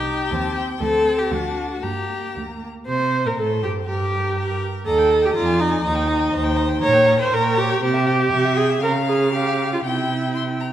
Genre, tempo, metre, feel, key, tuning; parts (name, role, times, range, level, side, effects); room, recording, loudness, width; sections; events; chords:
quick classical-period movement for string quartet; 121 BPM; 2/4; straight; G minor; A4 = 435 Hz
clear violin; melody; 0.0-10.7 s; Bb4 to C6; -30 LUFS; left 8 dB
rich violin; second line; 0.0-10.7 s; F#4 to Bb5; -26 LUFS; left 3 dB
rich viola; accompaniment; 0.0-10.6 s; Bb3 to Db5; -20 LUFS; right 1 dB
rich cello; bass; 0.0-10.7 s; C2 to Db3; -24 LUFS; right 3 dB
wet recital hall reverb, RT60 1.7 s; -18 LUFS; side -11 dB against mid
0.0-2.9 A section; 2.9-10.7 A section
0.0 Cm; 0.8 D7sus4; 1.3 D; 1.8 Gm; 2.9 Bbsus2; 3.4 Gsus24; 3.9 Gm; 4.9 Eb; 5.4 Bb7/F; 5.8 Eb; 6.8 Gdim/Bb; 7.8 C; 8.8 Db; 9.8 C